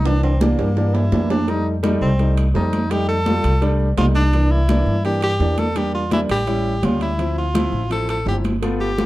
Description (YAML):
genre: Afro-Cuban jazz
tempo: 168 BPM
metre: 4/4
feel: straight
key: C mixolydian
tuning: A4 = 445 Hz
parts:
  - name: clear tenor saxophone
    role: melody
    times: 0.0-9.1 s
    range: Bb3 to A4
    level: -23 LUFS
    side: equal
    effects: none
  - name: warm grand piano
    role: accompaniment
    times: 0.0-9.1 s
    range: E3 to G4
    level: -23 LUFS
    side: equal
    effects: none
  - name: upright bass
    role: bass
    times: 0.0-9.1 s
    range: G1 to G2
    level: -20 LUFS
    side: equal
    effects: none
  - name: congas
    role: percussion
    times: 0.1-9.1 s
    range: none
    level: -25 LUFS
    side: equal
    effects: none
  - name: timbales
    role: percussion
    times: 0.1-9.1 s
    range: none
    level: -28 LUFS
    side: right 4 dB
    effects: none
room: moderate studio reverb, RT60 0.7 s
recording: dark, warm production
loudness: -16 LUFS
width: side -17 dB against mid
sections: 0.0-9.1 A section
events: drum fill 0.1-1.5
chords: 0.1 C9; 1.5 F9; 4.3 C9; 5.8 Em7b5; 6.5 A7; 7.2 Dm7